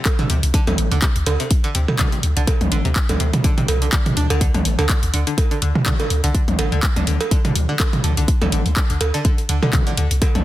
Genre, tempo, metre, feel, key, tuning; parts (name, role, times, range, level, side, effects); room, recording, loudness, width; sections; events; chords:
minimal techno; 124 BPM; 4/4; swing 56% on 16ths; A4 = 441 Hz
electronic kick drum; drums; 0.1-10.3 s; -18 LUFS; equal
house drum kit; drums; 0.1-10.4 s; handclaps, hi-hat; -24 LUFS; left 1 dB
electronic cowbell and toms; percussion; 0.1-10.4 s; -22 LUFS; right 2 dB
string-like resonator pluck; riff; 0.2-10.4 s; C3 to D4; -26 LUFS; equal; chorus, sidechain pumping, dub echo
punchy sub bass; bass; 0.3-10.4 s; A1 to D2; -20 LUFS; equal; tube saturation, sidechain pumping
little or no reverb; dense, heavily limited modern master; -16 LUFS; side -14 dB against mid
0.0-10.4 A section
0.0 D5